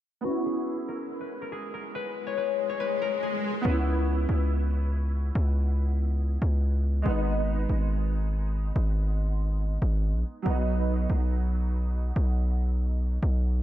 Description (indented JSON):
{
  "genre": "hip hop",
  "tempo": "141 BPM",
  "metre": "4/4",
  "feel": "half-time",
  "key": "unclear",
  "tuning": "A4 = 440 Hz",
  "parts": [
    { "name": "concert harp", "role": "melody", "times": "0.2-5.5 s", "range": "F#4 to C#5", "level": "-31 LUFS", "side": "left 8 dB", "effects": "low-pass filter, analog delay" },
    { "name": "warm grand piano", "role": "accompaniment", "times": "0.2-13.6 s", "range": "F#3 to E4", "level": "-33 LUFS", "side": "right 2 dB", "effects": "ensemble chorus, low-pass filter" },
    { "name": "swell", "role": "sound effects", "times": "1.6-3.7 s", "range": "none", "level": "-35 LUFS", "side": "left 1 dB", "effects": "none" },
    { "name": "distorted 808-style bass", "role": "bass", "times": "3.6-13.6 s", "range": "G#1 to C#2", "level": "-25 LUFS", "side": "equal", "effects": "distortion" }
  ],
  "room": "light reverb",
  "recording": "none",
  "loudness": "-25 LUFS",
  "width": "side -13 dB against mid",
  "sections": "0.2-3.7 A section; 3.7-13.6 B section",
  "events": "filter sweep 0.2-3.7; swell 1.6-3.7",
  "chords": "0.2 C#m7; 7.1 G#m; 10.5 B",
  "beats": "| 0.25 0.67 1.10 1.52 | 1.95 2.37 2.80 3.23 | 3.65 4.08 4.50 4.93 | 5.35 5.78 6.20 6.63 | 7.05 7.48 7.91 8.33 | 8.76 9.18 9.61 10.03 | 10.46 10.88 11.31 11.74 | 12.16 12.59 13.01 13.44"
}